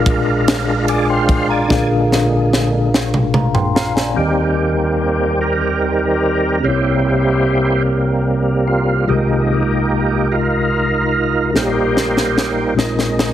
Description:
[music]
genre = slow gospel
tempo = 49 BPM (dotted quarters)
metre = 6/8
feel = straight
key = Eb major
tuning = A4 = 442 Hz
[part]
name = mellow tine electric piano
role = accompaniment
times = 0.0-13.3 s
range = Bb1 to D6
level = -17 LUFS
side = left 1 dB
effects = medium stereo tremolo
[part]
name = percussive tonewheel organ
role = sustained chords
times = 0.0-13.3 s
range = Bb2 to Ab5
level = -17 LUFS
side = right 2 dB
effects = slow rotary speaker, overdrive, chorus vibrato
[part]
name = crisp fusion drum kit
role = drums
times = 0.1-4.2, 11.6-13.3 s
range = kick drum, ride cymbal, snare drum, toms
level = -18 LUFS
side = equal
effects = none
[sound]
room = light reverb, small room ambience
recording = heavily compressed radio sound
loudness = -14 LUFS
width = side -11 dB against mid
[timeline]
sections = 0.0-1.7 A section; 1.7-4.2 B section; 4.2-13.3 C section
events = drum fill 1.7-4.2, 11.5-13.3; tonewheel organ solo 1.7-4.2, 4.2-13.3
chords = 0.0 Bb7; 4.2 Eb6; 6.6 C7b9; 9.1 Fm11/C; 11.5 Eb/Bb; 12.8 Bb9sus4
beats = 0.47 | 1.70 2.93 | 4.16 5.39 | 6.62 7.86 | 9.09 10.32 | 11.55 12.77

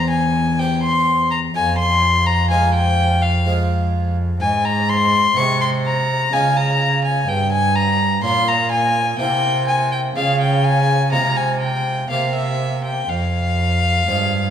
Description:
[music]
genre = classical, baroque-style sonata movement with continuo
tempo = 62 BPM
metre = 3/4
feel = straight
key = F minor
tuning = A4 = 439 Hz
[part]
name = warm violin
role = melody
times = 0.0-14.5 s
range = E5 to Db6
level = -18 LUFS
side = left 3 dB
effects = none
[part]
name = harpsichord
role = accompaniment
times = 0.0-14.5 s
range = E2 to Db5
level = -26 LUFS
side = right 3 dB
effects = none
[part]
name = rich cello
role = bass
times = 0.0-14.5 s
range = E2 to Db3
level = -19 LUFS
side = right 1 dB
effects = none
[sound]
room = wet recital hall reverb, RT60 1.7 s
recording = recorded in a church or concert hall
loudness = -15 LUFS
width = side -9 dB against mid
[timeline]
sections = 0.0-14.5 A section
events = none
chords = 0.0 C/E; 1.6 Fm; 4.4 Abmaj7; 6.3 Db; 7.3 Gm7b5; 9.2 C7; 10.2 Db; 11.1 Fm/C; 12.1 C7; 13.1 Fm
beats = 0.59 | 1.55 2.50 3.46 | 4.41 5.37 6.33 | 7.28 8.24 9.20 | 10.16 11.12 12.10 | 13.08 14.07

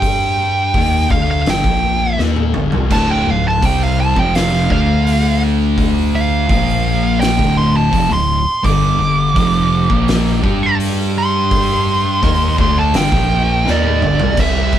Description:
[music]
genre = stoner and doom metal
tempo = 84 BPM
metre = 4/4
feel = straight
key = unclear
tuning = A4 = 439 Hz
[part]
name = fuzz lead guitar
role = melody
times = 0.0-14.8 s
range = D5 to D6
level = -18 LUFS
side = right 2 dB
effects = distortion
[part]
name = thick fuzz guitar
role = riff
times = 0.0-14.8 s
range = D2 to G4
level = -19 LUFS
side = left 5 dB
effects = distortion
[part]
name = overdriven fingered electric bass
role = bass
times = 0.0-14.8 s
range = D1 to G2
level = -20 LUFS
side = equal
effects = none
[part]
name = oversized low-tuned drum kit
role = drums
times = 0.0-14.8 s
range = crash cymbal, hi-hat, kick drum, snare drum, toms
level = -20 LUFS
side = equal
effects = none
[part]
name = thick fuzz guitar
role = riff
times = 2.9-14.8 s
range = D2 to G4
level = -19 LUFS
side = right 5 dB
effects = distortion
[sound]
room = moderate studio reverb, RT60 0.8 s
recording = band playing live in one room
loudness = -12 LUFS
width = side -10 dB against mid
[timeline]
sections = 0.0-14.4 A section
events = lead electric guitar solo 0.0-14.4; drum fill 2.2-2.9, 13.7-14.4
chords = 0.0 G5; 2.9 Dm; 6.5 Bb5; 7.4 Dm; 8.6 G5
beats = | 0.02 0.74 1.46 2.18 | 2.90 3.62 4.34 5.06 | 5.78 6.50 7.21 7.93 | 8.65 9.36 10.08 10.79 | 11.51 12.22 12.94 13.65 | 14.37

